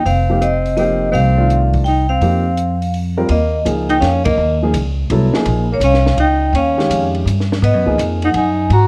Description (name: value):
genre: modal jazz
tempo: 167 BPM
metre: 3/4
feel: swing 66% on 8ths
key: F mixolydian, Eb mixolydian from 3.3 s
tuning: A4 = 440 Hz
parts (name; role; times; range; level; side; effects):
- vibraphone with medium hard mallets; melody; 0.0-8.9 s; Db5 to Bb5; -21 LUFS; equal; none
- breathy alto saxophone; second line; 0.0-8.9 s; Bb3 to Gb4; -22 LUFS; equal; none
- upright bass; bass; 0.0-8.9 s; F1 to Ab2; -19 LUFS; equal; none
- compact cocktail drum kit; drums; 0.1-8.8 s; hi-hat, kick drum, ride cymbal, snare drum; -28 LUFS; equal; none
- warm grand piano; accompaniment; 0.3-8.3 s; Eb3 to Bb4; -22 LUFS; equal; none
room: light reverb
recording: worn, warbling old tape, cassette tape, warbly pitch drift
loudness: -15 LUFS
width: mono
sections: 0.0-3.3 A section; 3.3-8.9 B section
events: band accent 4.2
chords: 0.0 F9sus4; 3.3 Eb9sus4; 7.6 Db9sus4 (rootless)